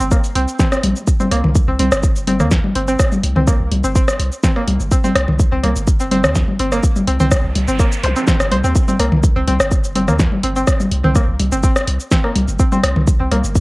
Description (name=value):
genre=minimal techno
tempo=125 BPM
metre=4/4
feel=straight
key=C minor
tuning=A4 = 440 Hz
part: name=string-like resonator pluck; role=riff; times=0.0-13.4 s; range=Bb3 to C5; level=-21 LUFS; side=equal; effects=chorus, sidechain pumping, cassette tape, tape echo
part: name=punchy sub bass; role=bass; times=0.0-13.6 s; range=G1 to Eb2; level=-19 LUFS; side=equal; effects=sidechain pumping
part: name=punchy analog drum machine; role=drums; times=0.0-13.6 s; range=hi-hat, shaker, snare drum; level=-23 LUFS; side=equal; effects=none
part: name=electronic kick drum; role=drums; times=0.1-13.6 s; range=none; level=-15 LUFS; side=equal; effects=none
part: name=minimal click drum kit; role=percussion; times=0.1-13.4 s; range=rim click, toms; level=-19 LUFS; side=left 1 dB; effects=none
part: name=noise sweep and zap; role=sound effects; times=7.5-8.8 s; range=none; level=-28 LUFS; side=right 1 dB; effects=none
room=light reverb, digital ambience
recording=home recording on cassette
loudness=-13 LUFS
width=side -22 dB against mid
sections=0.0-13.6 A section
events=noise sweep 7.5-8.8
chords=0.0 C5